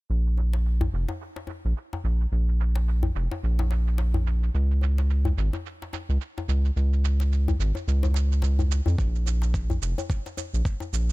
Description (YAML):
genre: organic downtempo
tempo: 108 BPM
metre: 4/4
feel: swing 58% on 16ths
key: Bb minor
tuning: A4 = 440 Hz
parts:
  - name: round analog bass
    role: bass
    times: 0.1-11.1 s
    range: F1 to F2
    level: -22 LUFS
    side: equal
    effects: tube saturation, sidechain pumping
  - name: shaker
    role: drums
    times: 0.1-11.1 s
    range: none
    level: -40 LUFS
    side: right 14 dB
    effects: overdrive, low-pass filter on perc
  - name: djembe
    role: percussion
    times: 0.4-10.9 s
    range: none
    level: -32 LUFS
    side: left 2 dB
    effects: none
  - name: electronic kick drum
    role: drums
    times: 9.0-10.8 s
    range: none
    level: -26 LUFS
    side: equal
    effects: overdrive
room: digital ambience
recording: none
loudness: -23 LUFS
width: side -22 dB against mid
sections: 0.1-11.1 A section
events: filter sweep on drum 0.1-11.1; filter sweep on analog synth bass 0.1-11.1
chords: none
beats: | 0.10 0.65 1.21 1.76 | 2.32 2.88 3.43 3.99 | 4.54 5.10 5.65 6.21 | 6.76 7.32 7.88 8.43 | 8.99 9.54 10.10 10.65